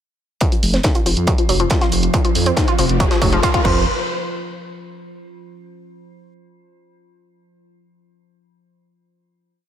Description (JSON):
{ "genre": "driving peak-time techno", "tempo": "139 BPM", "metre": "4/4", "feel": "straight", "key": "unclear", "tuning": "A4 = 440 Hz", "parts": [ { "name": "analog pluck", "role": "riff", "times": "0.4-3.9 s", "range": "Eb3 to F4", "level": "-21 LUFS", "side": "equal", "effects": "chorus, overdrive, sidechain pumping, ping-pong delay" }, { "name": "metallic inharmonic drone", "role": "drone", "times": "1.0-3.9 s", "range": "F3", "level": "-27 LUFS", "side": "right 2 dB", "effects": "chorus, built-in reverb, sidechain pumping" }, { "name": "electronic kick drum", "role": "drums", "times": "0.4-3.7 s", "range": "none", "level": "-18 LUFS", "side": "equal", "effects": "distortion, overdrive" }, { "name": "punchy analog drum machine", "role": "drums", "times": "0.4-3.7 s", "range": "crash cymbal, hi-hat", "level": "-26 LUFS", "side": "right 1 dB", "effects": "none" }, { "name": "warm soul drum kit", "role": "drums", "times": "0.4-3.5 s", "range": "hi-hat, snare drum", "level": "-30 LUFS", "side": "right 2 dB", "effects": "sidechain pumping on hats, high-pass filter on hats, high-pass filter on snare, high-pass filter on room" }, { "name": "riser", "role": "sound effects", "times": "1.7-3.9 s", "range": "none", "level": "-27 LUFS", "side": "left 1 dB", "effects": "none" }, { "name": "dark detuned saw bass", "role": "bass", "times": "0.6-3.8 s", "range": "F1 to F2", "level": "-19 LUFS", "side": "equal", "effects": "tube saturation, sidechain pumping" } ], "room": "light reverb, digital ambience", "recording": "none", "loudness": "-14 LUFS", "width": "side -10 dB against mid", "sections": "0.4-3.9 build; 3.9-5.6 final hit", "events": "build-up 0.4-3.9; filter sweep on synth arpeggio sound 0.4-3.9; riser 1.7-3.9; drum fill 2.1-3.9", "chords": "0.4 F5; 3.6 N.C." }